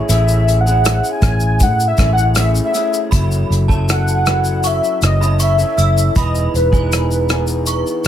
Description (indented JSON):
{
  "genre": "indie pop, bedroom pop",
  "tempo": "79 BPM",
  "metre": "4/4",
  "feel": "straight",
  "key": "unclear",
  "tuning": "A4 = 440 Hz",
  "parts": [
    { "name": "warm velvety synth lead", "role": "melody", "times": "0.0-8.0 s", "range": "B4 to G#5", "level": "-19 LUFS", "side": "left 1 dB", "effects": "lush chorus, plate reverb, digital delay" },
    { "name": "electric guitar through a small old amp", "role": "accompaniment", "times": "0.0-8.1 s", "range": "E3 to A4", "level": "-22 LUFS", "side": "left 2 dB", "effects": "lush chorus, vibrato effect, plate reverb" },
    { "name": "fingered electric bass", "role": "bass", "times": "0.1-8.1 s", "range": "E1 to A2", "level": "-16 LUFS", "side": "equal", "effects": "none" },
    { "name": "unplugged drum kit", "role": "drums", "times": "0.1-8.1 s", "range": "hi-hat, kick drum, rim click, shaker", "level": "-18 LUFS", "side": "equal", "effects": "none" },
    { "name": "synth chime", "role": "second line", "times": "3.1-7.9 s", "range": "G#5 to E6", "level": "-27 LUFS", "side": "right 6 dB", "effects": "ensemble chorus, plate reverb, digital delay" }
  ],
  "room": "light reverb",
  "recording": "none",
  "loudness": "-13 LUFS",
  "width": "side -10 dB against mid",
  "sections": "0.0-3.1 A section; 3.1-8.1 B section",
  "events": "soft synth lead solo 0.0-3.1",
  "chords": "0.0 Amaj7; 3.1 F#m7; 6.2 Emaj7"
}